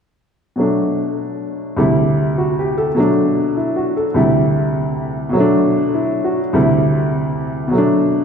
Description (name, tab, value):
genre	solo jazz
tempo	101 BPM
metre	4/4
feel	swing 67% on 8ths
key	unclear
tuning	A4 = 438 Hz
part	warm upright piano	solo	0.6-8.2 s	D2 to A4	-14 LUFS	equal	none
room	wet church reverb, RT60 3.2 s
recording	recorded in a church or concert hall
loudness	-14 LUFS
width	side -6 dB against mid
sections	0.6-8.2 A section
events	none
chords	0.6 Bm7; 1.8 D9sus4; 3.0 Bm7; 4.1 D9sus4; 5.3 Bm7; 6.5 D9sus4; 7.7 Bm7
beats	| 0.57 1.17 1.76 2.36 | 2.95 3.55 4.14 4.74 | 5.34 5.93 6.53 7.12 | 7.72